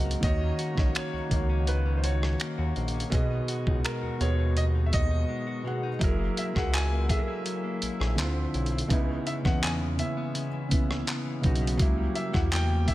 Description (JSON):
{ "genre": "contemporary R&B", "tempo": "83 BPM", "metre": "4/4", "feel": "straight", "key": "unclear", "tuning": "A4 = 440 Hz", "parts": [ { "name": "felt-muted upright piano", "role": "accompaniment", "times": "0.0-12.9 s", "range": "B2 to F#5", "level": "-32 LUFS", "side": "right 2 dB", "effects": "none" }, { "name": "mellow accordion", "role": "sustained chords", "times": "0.0-12.9 s", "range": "B#2 to E5", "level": "-41 LUFS", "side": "left 1 dB", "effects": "none" }, { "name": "direct-recorded clean electric guitar", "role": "arpeggios", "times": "0.0-12.9 s", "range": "G#2 to G#4", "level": "-36 LUFS", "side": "left 6 dB", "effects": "vibrato effect" }, { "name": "smooth synth bass", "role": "bass", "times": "0.0-12.9 s", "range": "F#1 to E2", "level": "-28 LUFS", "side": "equal", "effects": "none" }, { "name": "dusty soul sampler-style drum kit", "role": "drums", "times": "0.1-12.9 s", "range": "finger snaps, handclaps, hi-hat, kick drum, rim click", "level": "-28 LUFS", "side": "equal", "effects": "none" }, { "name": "warm concert grand piano", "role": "melody", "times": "0.2-12.9 s", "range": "A#4 to G#5", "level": "-36 LUFS", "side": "equal", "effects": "tape echo" } ], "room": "small room ambience", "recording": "none", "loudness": "-25 LUFS", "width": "side -16 dB against mid", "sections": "0.0-6.0 A section; 6.0-12.9 B section", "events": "break 5.3-6.0", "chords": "0.2 D#m7; 3.1 B6; 6.0 F#9; 8.2 Dm9; 8.9 C#m9; 11.8 F#7b9/C#", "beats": "| 0.23 0.95 1.68 2.40 | 3.12 3.84 4.57 5.29 | 6.01 6.74 7.46 8.18 | 8.90 9.63 10.35 11.07 | 11.80 12.52" }